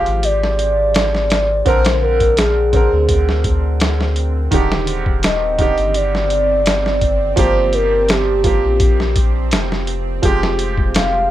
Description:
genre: trip hop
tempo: 84 BPM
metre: 4/4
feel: straight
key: F dorian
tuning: A4 = 440 Hz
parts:
  - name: pure breathy sine lead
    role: melody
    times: 0.0-11.3 s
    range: G4 to F5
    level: -18 LUFS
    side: equal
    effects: chorus, cassette tape, tape echo
  - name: bright upright piano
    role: accompaniment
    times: 0.0-11.3 s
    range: D3 to Bb4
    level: -22 LUFS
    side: right 3 dB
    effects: harmonic tremolo, tape echo
  - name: soft dub sub bass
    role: bass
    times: 0.0-11.3 s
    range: Eb1 to D2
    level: -19 LUFS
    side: equal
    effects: none
  - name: bowed-like drone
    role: texture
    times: 0.0-11.3 s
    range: C4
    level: -29 LUFS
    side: right 4 dB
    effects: built-in reverb
  - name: boom bap sampler-style drum kit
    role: drums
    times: 0.1-11.1 s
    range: hi-hat, kick drum, snare drum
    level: -18 LUFS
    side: equal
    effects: none
  - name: string machine, cellos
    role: sustained chords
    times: 10.2-11.3 s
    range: Ab3 to G4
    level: -31 LUFS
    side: left 1 dB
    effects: none
room: little or no reverb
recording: rough home demo mix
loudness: -13 LUFS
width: side -13 dB against mid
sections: 0.0-11.3 A section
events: none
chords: 0.0 Fmadd9; 1.7 Bbadd9; 4.5 Ebmaj7; 7.4 Gm7; 10.2 Fmadd9

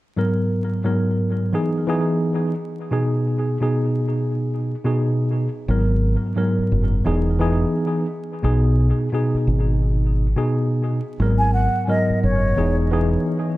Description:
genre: hip hop, boom-bap hip-hop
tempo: 87 BPM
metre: 4/4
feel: swing 62% on 16ths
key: G# minor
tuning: A4 = 441 Hz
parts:
  - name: mellow tine electric piano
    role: accompaniment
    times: 0.2-13.6 s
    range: G#2 to A#4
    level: -20 LUFS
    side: equal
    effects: medium stereo tremolo, tape echo
  - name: deep dub fingered electric bass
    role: bass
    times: 5.7-13.2 s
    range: E1 to B1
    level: -20 LUFS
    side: equal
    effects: none
  - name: breathy mellow concert flute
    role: melody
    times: 11.4-12.8 s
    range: C#5 to G#5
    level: -23 LUFS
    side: equal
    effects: tape echo
room: light reverb, small room ambience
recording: echo-heavy mix, vinyl crackle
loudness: -18 LUFS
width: side -17 dB against mid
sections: 0.2-11.2 A section; 11.2-13.6 B section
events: none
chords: 0.2 G#m9; 1.5 Emaj7; 2.9 B6; 5.7 G#m9; 7.1 Emaj7; 8.4 B6; 11.2 G#m9; 12.6 Emaj7

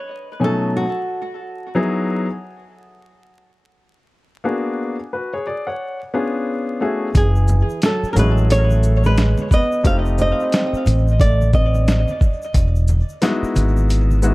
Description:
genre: hip hop, jazz-hop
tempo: 89 BPM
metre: 4/4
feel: swing 60% on 16ths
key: unclear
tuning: A4 = 439 Hz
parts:
  - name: flamenco guitar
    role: melody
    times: 0.0-1.4, 7.2-12.2 s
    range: F#4 to F5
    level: -23 LUFS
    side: right 1 dB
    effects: tape echo
  - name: warm grand piano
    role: accompaniment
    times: 0.4-14.3 s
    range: B2 to G#5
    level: -21 LUFS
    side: left 2 dB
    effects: none
  - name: growling trombone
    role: second line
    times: 7.1-12.2 s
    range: E3 to C4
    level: -26 LUFS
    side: right 2 dB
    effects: none
  - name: dusty soul sampler-style drum kit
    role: drums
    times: 7.1-14.3 s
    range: hi-hat, kick drum, shaker, snare drum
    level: -17 LUFS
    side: equal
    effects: none
  - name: egg shaker and congas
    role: percussion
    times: 7.1-14.3 s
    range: none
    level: -31 LUFS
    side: left 1 dB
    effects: tape echo
  - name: deep dub fingered electric bass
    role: bass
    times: 7.2-14.3 s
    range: E1 to A1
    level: -16 LUFS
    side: equal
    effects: none
room: light reverb, small room ambience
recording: echo-heavy mix, vinyl crackle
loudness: -16 LUFS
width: side -21 dB against mid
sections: 0.0-14.3 A section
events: none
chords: 0.4 B13; 1.8 Emaj9; 4.5 G#m7b5; 5.8 C#7b9; 7.1 F#m9; 9.8 F9; 12.5 Emaj9

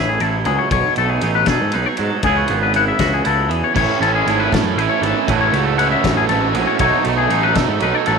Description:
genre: math rock and midwest emo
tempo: 79 BPM (dotted quarters)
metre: 6/8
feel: straight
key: unclear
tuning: A4 = 440 Hz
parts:
  - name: twangy electric guitar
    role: accompaniment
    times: 0.0-8.2 s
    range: F#2 to G#4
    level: -21 LUFS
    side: right 15 dB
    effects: none
  - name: twangy electric guitar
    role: arpeggios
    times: 0.0-8.2 s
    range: G#4 to F#5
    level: -19 LUFS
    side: left 14 dB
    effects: wide subtle chorus
  - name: fuzz picked electric bass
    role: bass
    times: 0.0-8.2 s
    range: G#1 to B2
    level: -20 LUFS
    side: right 1 dB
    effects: overdrive
  - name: loose indie drum kit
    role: drums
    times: 0.2-8.2 s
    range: crash cymbal, kick drum, ride cymbal, snare drum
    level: -24 LUFS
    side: left 4 dB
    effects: none
  - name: crunchy overdriven guitar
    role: riff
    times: 3.7-8.2 s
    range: B2 to A4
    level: -20 LUFS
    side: right 16 dB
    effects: none
room: small room reverb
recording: 1960s-style stereo with parts hard left and right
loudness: -14 LUFS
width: side -5 dB against mid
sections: 0.0-8.2 A section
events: none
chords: 0.0 F#m9/A; 0.7 B13; 2.2 C#m7; 5.3 F#m9/A; 6.8 B13

